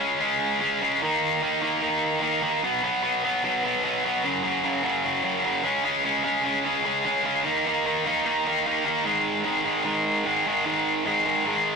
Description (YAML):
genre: punk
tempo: 149 BPM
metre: 4/4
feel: straight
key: unclear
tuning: A4 = 440 Hz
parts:
  - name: tight distorted guitar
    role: solo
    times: 0.0-11.8 s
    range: Gb2 to Eb4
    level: -22 LUFS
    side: equal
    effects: distortion
room: moderate studio reverb, RT60 0.6 s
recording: rough rehearsal-room recording, tube saturation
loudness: -22 LUFS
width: side -4 dB against mid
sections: 0.0-2.6 A section; 2.6-9.1 B section; 9.1-11.8 C section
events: none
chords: 0.0 Db5; 1.0 Eb5; 2.6 B5; 4.2 Gb5; 5.6 Db5; 7.5 Eb5; 9.1 Ab5